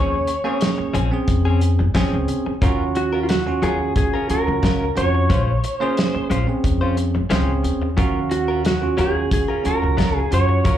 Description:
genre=straight-eighth soul blues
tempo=90 BPM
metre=4/4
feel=swing 54% on 16ths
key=Bb minor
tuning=A4 = 438 Hz
part: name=electric slide guitar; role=melody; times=0.0-10.8 s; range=F4 to Db5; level=-22 LUFS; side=equal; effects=plate reverb, slapback echo
part: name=bell-like tine electric piano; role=accompaniment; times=0.0-10.8 s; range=Bb3 to F5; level=-24 LUFS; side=right 5 dB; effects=plate reverb, slapback echo
part: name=direct-recorded clean electric guitar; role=stabs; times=0.0-10.8 s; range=F3 to C5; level=-27 LUFS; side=left 5 dB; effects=plate reverb, slapback echo
part: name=upright bass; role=bass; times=0.0-10.8 s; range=Ab1 to Ab2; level=-21 LUFS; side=equal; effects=none
part: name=warm soul drum kit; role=drums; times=0.3-10.8 s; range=hi-hat, kick drum, snare drum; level=-22 LUFS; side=equal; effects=none
room=light reverb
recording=live gig heard through the venue's PA, club reverb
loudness=-17 LUFS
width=side -11 dB against mid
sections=0.0-10.8 A section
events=none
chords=0.0 Bbm9; 2.6 Ebm9; 5.3 Bbm9; 8.0 Ebm9

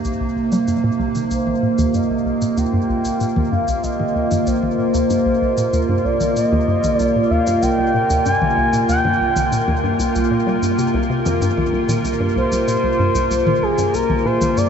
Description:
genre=ambient, sequencer-driven space music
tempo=95 BPM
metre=4/4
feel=straight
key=C minor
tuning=A4 = 436 Hz
part: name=evolving wavetable pad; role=sustained chords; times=0.0-14.7 s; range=C3 to C5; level=-19 LUFS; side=right 2 dB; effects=chorus, built-in reverb
part: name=hollow square pluck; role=riff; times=0.0-14.7 s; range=C2 to G3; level=-22 LUFS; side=equal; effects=chorus, ping-pong delay
part: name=electronic shaker and toms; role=percussion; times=0.0-14.7 s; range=none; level=-28 LUFS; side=left 4 dB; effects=overdrive, ping-pong delay
part: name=expressive synth lead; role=melody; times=1.3-14.7 s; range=Ab4 to Ab5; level=-21 LUFS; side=left 1 dB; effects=chorus, ping-pong delay
room=wet huge ambient reverb, RT60 9.3 s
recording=nothing above 7.9 kHz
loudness=-16 LUFS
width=side -7 dB against mid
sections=0.0-14.7 A section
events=filter sweep on synth arpeggio sound 0.0-14.7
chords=0.0 Cm7

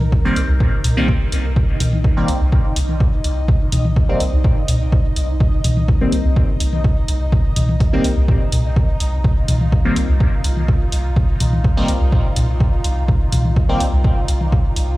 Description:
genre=dub techno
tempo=125 BPM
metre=4/4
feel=straight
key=C minor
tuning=A4 = 440 Hz
part: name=soft dub sub bass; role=bass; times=0.0-15.0 s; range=C2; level=-18 LUFS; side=equal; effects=sidechain pumping
part: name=electronic toms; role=percussion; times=0.0-14.5 s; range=none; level=-23 LUFS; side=left 1 dB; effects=sidechain pumping on toms, dub echo
part: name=bubbling stepped-filter texture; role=texture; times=0.0-15.0 s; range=Eb4 to Eb5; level=-29 LUFS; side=equal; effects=chorus, built-in reverb, sidechain pumping
part: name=electronic kick drum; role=drums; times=0.1-14.6 s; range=none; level=-16 LUFS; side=equal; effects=overdrive
part: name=resonant sweep polysynth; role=stabs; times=0.2-13.8 s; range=Eb3 to C4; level=-24 LUFS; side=equal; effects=chorus, phaser, sidechain pumping, dub echo
part: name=electronic hi-hat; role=drums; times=0.4-14.9 s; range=none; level=-27 LUFS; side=equal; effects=overdrive
room=little or no reverb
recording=played on a big sound system in a bare room, large studio reverb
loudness=-14 LUFS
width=side -18 dB against mid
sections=0.0-15.0 A section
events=none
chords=0.0 Cm7

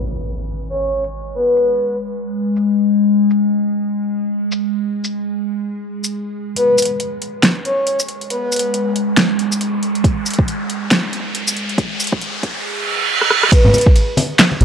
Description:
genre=deep dubstep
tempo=138 BPM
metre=4/4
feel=swing 59% on 16ths, half-time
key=G# minor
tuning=A4 = 436 Hz
part: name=overtone-sweeping drone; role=sustained chords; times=1.8-13.6 s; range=G#3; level=-20 LUFS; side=left 1 dB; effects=chorus, built-in reverb
part: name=impact, riser and reverse cymbal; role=sound effects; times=0.0-1.3, 8.1-13.5 s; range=none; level=-22 LUFS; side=right 3 dB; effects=none
part: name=breathy flute-like synth lead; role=melody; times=0.7-2.0, 6.6-8.9, 13.5-14.6 s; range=B4 to C#5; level=-18 LUFS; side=left 1 dB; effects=lush chorus, dub echo
part: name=deep house drum kit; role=drums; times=1.0-14.6 s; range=handclaps, hi-hat, ride cymbal, rim click, shaker, snare drum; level=-16 LUFS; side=equal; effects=none
part: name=electronic kick drum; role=drums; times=10.0-13.9 s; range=none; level=-13 LUFS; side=equal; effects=none
part: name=congas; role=percussion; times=13.6-14.6 s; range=none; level=-15 LUFS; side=left 1 dB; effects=none
part: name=dark detuned saw bass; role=bass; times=14.6 s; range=G#1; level=-12 LUFS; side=equal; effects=none
room=light reverb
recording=dry, gritty hardware recording, transformer saturation, cassette tape, high-pass filter, low-pass filter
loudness=-15 LUFS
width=side -7 dB against mid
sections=0.0-6.6 A section; 6.6-13.5 B section; 13.5-14.6 C section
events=impact 0.0-1.3; filter sweep on synth drone 0.0-6.6, 6.6-13.5; filter sweep 0.0-6.6, 6.6-13.5; build-up 6.6-13.5; riser 8.1-13.5; reverse cymbal 12.7-13.5; drum fill 13.2-13.5; drop 13.5-14.6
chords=none

